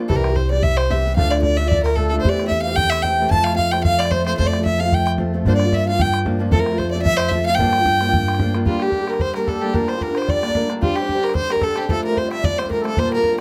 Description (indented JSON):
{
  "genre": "celtic folk, Celtic reel",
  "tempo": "224 BPM",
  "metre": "4/4",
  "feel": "swing 54% on 8ths",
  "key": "unclear",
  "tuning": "A4 = 437 Hz",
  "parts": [
    { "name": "picked old ladder-braced acoustic guitar", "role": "accompaniment", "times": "0.0-13.4 s", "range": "D2 to C5", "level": "-26 LUFS", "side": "equal", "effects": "none" },
    { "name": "rich fiddle", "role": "melody", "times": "0.1-13.4 s", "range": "F4 to A5", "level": "-23 LUFS", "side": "equal", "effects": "none" },
    { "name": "wooden flute", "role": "second line", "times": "0.1-13.4 s", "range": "F4 to A5", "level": "-28 LUFS", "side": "equal", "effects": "none" },
    { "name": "upright bass", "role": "bass", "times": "0.1-8.6 s", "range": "C2 to G2", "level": "-24 LUFS", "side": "equal", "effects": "none" },
    { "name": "bodhran", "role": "percussion", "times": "0.1-13.4 s", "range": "none", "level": "-26 LUFS", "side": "equal", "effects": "none" },
    { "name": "accordion", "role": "drone", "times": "8.7-13.4 s", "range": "G2 to D3", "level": "-34 LUFS", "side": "equal", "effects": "none" }
  ],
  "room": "light reverb",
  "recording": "close, detailed microphones",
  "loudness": "-19 LUFS",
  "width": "mono",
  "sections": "0.1-8.7 A section; 8.7-13.4 B section",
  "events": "none",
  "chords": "0.1 C; 1.2 Dm; 2.2 Am7/E; 3.3 F; 5.5 Gm7; 6.5 F; 7.6 Gm7; 8.7 Gm; 9.7 Bb; 10.8 Csus2; 11.9 F",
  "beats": "| 0.09 0.36 0.63 0.90 | 1.17 1.43 1.70 1.97 | 2.24 2.51 2.77 3.04 | 3.31 3.58 3.85 4.12 | 4.38 4.65 4.92 5.19 | 5.46 5.72 5.99 6.26 | 6.53 6.79 7.06 7.33 | 7.60 7.87 8.13 8.40 | 8.67 8.94 9.21 9.47 | 9.74 10.01 10.28 10.55 | 10.82 11.09 11.35 11.62 | 11.89 12.16 12.43 12.69 | 12.96 13.23"
}